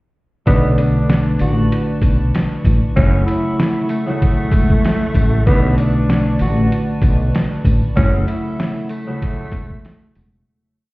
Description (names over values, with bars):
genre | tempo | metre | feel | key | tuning
hip hop, boom-bap hip-hop | 96 BPM | 4/4 | swing 55% on 16ths | B minor | A4 = 440 Hz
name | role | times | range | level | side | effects
growling tenor saxophone | melody | 0.5-10.4 s | A3 to F#4 | -23 LUFS | right 1 dB | tape echo
Celtic harp | accompaniment | 0.5-10.9 s | C#3 to E4 | -20 LUFS | left 1 dB | none
hollow soft pad | sustained chords | 0.5-10.4 s | A4 to C#6 | -32 LUFS | right 1 dB | chorus
woody fretless electric bass | bass | 0.5-10.4 s | E1 to B1 | -16 LUFS | equal | lush chorus
boom bap sampler-style drum kit | drums | 0.5-10.3 s | hi-hat, kick drum, snare drum | -16 LUFS | equal | none
tambourine | percussion | 0.8-10.3 s | none | -50 LUFS | left 2 dB | none
room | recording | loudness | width
light reverb | heard muffled through a wall, stone room reverb, EQ | -14 LUFS | side -20 dB against mid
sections
0.5-10.5 hook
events
fade-out 8.0-10.5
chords
0.5 Bm9; 3.0 F#m7; 5.5 Bm9; 8.0 F#m7